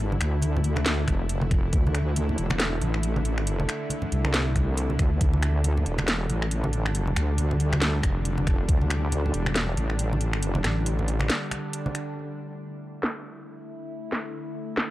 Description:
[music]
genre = deep dubstep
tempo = 138 BPM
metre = 4/4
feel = swing 58% on 16ths, half-time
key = D minor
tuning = A4 = 438 Hz
[part]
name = bowed-like drone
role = sustained chords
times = 0.0-14.9 s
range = D3 to E4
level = -33 LUFS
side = equal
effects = built-in reverb
[part]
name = wobble bass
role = bass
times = 0.0-11.3 s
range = E1 to D2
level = -25 LUFS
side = equal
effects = chorus
[part]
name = congas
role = percussion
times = 0.1-11.9 s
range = none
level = -32 LUFS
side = right 1 dB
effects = none
[part]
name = garage drum kit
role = drums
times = 0.2-14.9 s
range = finger snaps, hi-hat, snare drum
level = -29 LUFS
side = equal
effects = low-pass filter on hats, low-pass filter on snare, low-pass filter on cymbals
[part]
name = electronic kick drum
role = drums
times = 1.1-1.8, 4.6-5.3, 8.0-8.8 s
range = none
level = -24 LUFS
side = equal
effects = none
[sound]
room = digital ambience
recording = dry, gritty hardware recording, cassette tape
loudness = -23 LUFS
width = side -16 dB against mid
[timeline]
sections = 0.0-12.2 A section; 12.2-14.9 B section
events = break 11.3-12.2; filter sweep on synth drone 12.2-14.9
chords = 0.0 D5

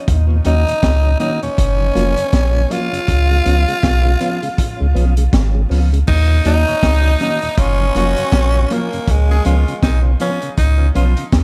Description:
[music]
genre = roots reggae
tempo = 80 BPM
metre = 4/4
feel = swing 60% on 16ths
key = unclear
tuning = A4 = 443 Hz
[part]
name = growling tenor saxophone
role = melody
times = 0.0-9.8 s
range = Ab3 to F4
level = -22 LUFS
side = equal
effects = tape echo
[part]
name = warm sub bass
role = bass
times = 0.1-11.4 s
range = F1 to Eb2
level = -16 LUFS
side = equal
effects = none
[part]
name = crunchy breakbeat drum kit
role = drums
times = 0.1-11.4 s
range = crash cymbal, hi-hat, kick drum, snare drum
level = -22 LUFS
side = equal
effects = none
[part]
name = mellow tonewheel organ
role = accompaniment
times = 0.3-11.2 s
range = Eb2 to F4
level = -29 LUFS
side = equal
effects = slow rotary speaker, tape echo
[part]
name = mellow electric guitar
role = accompaniment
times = 0.4-11.1 s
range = Eb3 to Gb4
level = -28 LUFS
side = equal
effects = spring reverb, tape echo
[part]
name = raspy tenor saxophone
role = second line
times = 6.1-11.3 s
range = Db4 to Ab4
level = -26 LUFS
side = equal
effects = tape echo
[sound]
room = light reverb, small room ambience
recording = echo-heavy mix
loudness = -15 LUFS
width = mono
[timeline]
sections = 0.0-6.1 A section; 6.1-11.4 A section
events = none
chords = 0.1 Ebm7; 1.6 Gbmaj7; 3.1 Db7; 6.1 Ebm7; 7.6 Gbmaj7; 9.1 Db7

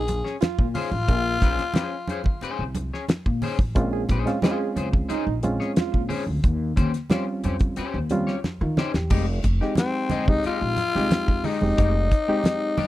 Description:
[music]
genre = funk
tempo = 90 BPM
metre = 4/4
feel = straight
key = F minor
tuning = A4 = 438 Hz
[part]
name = growling tenor saxophone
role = melody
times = 0.0-2.7, 9.8-12.9 s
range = C4 to Ab4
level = -26 LUFS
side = left 4 dB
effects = none
[part]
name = upright bass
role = bass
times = 0.0-12.8 s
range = E1 to Eb3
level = -26 LUFS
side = equal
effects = none
[part]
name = electric guitar at the edge of break-up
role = accompaniment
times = 0.1-12.9 s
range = Ab3 to Db5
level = -31 LUFS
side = left 6 dB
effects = wide subtle chorus
[part]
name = damped 70s drum kit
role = drums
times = 0.1-12.9 s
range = crash cymbal, hi-hat, kick drum, snare drum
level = -22 LUFS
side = equal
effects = none
[part]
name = congas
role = percussion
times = 0.1-12.9 s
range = none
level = -32 LUFS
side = right 3 dB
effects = none
[part]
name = warm trombone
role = second line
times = 0.4-6.0 s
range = Eb4 to Ab4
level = -30 LUFS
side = right 15 dB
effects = none
[part]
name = bright reed electric piano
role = stabs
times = 3.8-12.8 s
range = G3 to G4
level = -27 LUFS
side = right 2 dB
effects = overdrive
[sound]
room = small room ambience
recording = dry, close 1970s-style studio recording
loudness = -21 LUFS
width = side -15 dB against mid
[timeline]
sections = 0.0-9.1 A section; 9.1-12.9 B section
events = drum fill 8.4-9.1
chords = 0.0 Bbm9; 6.4 Eb13; 9.1 Fm9

